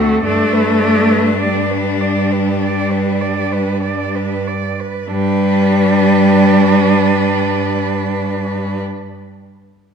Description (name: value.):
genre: classical, lyrical piece for cello ensemble.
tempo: 50 BPM.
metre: 4/4.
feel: rubato.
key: G major.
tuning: A4 = 440 Hz.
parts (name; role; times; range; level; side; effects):
rich cello; melody; 0.0-8.8 s; C4 to B4; -21 LUFS; left 5 dB; none.
rich cello; second line; 0.0-8.8 s; D4 to D5; -20 LUFS; right 7 dB; none.
clear cello; accompaniment; 0.0-8.8 s; G3 to A3; -15 LUFS; left 1 dB; none.
rich cello; bass; 0.0-8.8 s; D2 to G2; -22 LUFS; right 3 dB; none.
room: wet scoring stage reverb, RT60 1.6 s.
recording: minimal, uncompressed stereo recording.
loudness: -13 LUFS.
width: side -6 dB against mid.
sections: 0.0-5.1 A section; 5.1-9.9 B section.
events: slowing down 0.0-5.1.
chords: 0.2 G.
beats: | 0.24 1.41 2.61 3.82 | 5.09 6.29 7.50 8.70.